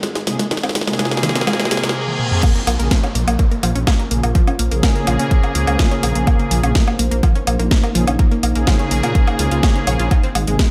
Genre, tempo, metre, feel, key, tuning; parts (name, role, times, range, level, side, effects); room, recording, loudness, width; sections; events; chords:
melodic techno; 125 BPM; 4/4; straight; Bb minor; A4 = 440 Hz
deep dark ambient pad; sustained chords; 0.0-10.7 s; Ab3 to C5; -32 LUFS; equal; chorus, built-in reverb, sidechain pumping
unison pluck; arpeggios; 0.0-10.6 s; Eb3 to Db6; -27 LUFS; equal; sidechain pumping, digital delay
house drum kit; drums; 0.0-10.7 s; crash cymbal, hi-hat, snare drum, toms, woodblock; -23 LUFS; equal; sidechain pumping on hats, sidechain pumping on perc, sidechain pumping on toms, sidechain pumping on cymbals, gated reverb
brassy analog pad; stabs; 0.3-10.6 s; C3 to Ab4; -25 LUFS; equal; chorus, sidechain pumping, digital delay
reverse cymbal and downlifter; sound effects; 1.8-6.3 s; -31 LUFS; equal
electronic kick drum; drums; 2.4-10.7 s; -17 LUFS; equal
swelling detuned saw bass; bass; 2.7-10.6 s; Ab1 to Bb2; -21 LUFS; equal; tube saturation, sidechain pumping
light reverb, digital ambience; bright 1980s-style digital production; -17 LUFS; mono
0.0-2.4 A section; 2.4-10.7 B section
build-up 0.0-2.4; drum fill 0.0-2.0, 2.1-2.4; reverse cymbal 1.8-2.4; drop 2.4-10.7
0.0 Abadd9; 2.4 Bbm7; 10.1 Abadd9